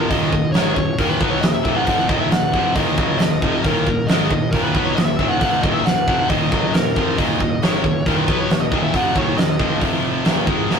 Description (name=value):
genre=heavy metal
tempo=136 BPM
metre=4/4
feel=straight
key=Eb minor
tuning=A4 = 437 Hz
part: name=bluesy overdriven lead guitar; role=melody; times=0.0-9.8 s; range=Bb4 to Gb5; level=-23 LUFS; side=left 1 dB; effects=distortion
part: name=high-gain distorted guitar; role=riff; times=0.0-10.8 s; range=Eb2 to Cb4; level=-23 LUFS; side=left 6 dB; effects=distortion
part: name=high-gain distorted guitar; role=riff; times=0.0-10.8 s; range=Eb2 to Cb4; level=-23 LUFS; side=right 6 dB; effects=distortion
part: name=fuzz picked electric bass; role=bass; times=0.0-10.8 s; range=Eb1 to Cb2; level=-28 LUFS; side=equal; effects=none
part: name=big rock drum kit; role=drums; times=0.1-10.8 s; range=hi-hat, kick drum, snare drum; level=-19 LUFS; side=equal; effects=none
room=moderate studio reverb, RT60 0.7 s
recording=rough rehearsal-room recording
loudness=-16 LUFS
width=side -6 dB against mid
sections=0.0-10.8 A section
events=none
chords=0.0 Ebm; 9.8 F5; 10.3 Eb5